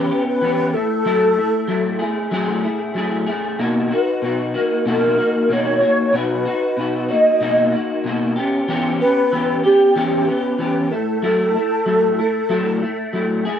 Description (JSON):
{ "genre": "indie pop", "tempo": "94 BPM", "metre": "4/4", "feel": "swing 55% on 16ths", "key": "B major", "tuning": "A4 = 440 Hz", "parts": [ { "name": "mellow wooden-headed alto flute", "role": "melody", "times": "0.0-13.5 s", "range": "G4 to D#5", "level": "-18 LUFS", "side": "equal", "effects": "ensemble chorus, cassette tape, analog delay" }, { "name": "electric guitar through a small old amp", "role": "accompaniment", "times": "0.0-13.6 s", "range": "B2 to G#4", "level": "-19 LUFS", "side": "left 1 dB", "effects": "ensemble chorus, warbly pitch drift, cassette tape" } ], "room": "light reverb", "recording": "home recording on cassette", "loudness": "-16 LUFS", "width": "side -9 dB against mid", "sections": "0.0-13.6 A section", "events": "none", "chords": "0.0 Em6; 0.7 F#m9; 3.6 Bmaj7; 8.4 Em6; 10.9 F#m7", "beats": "0.41 | 1.05 1.69 2.33 2.96 | 3.60 4.24 4.87 5.51 | 6.14 6.78 7.42 8.05 | 8.69 9.33 9.96 10.60 | 11.23 11.87 12.51 13.14" }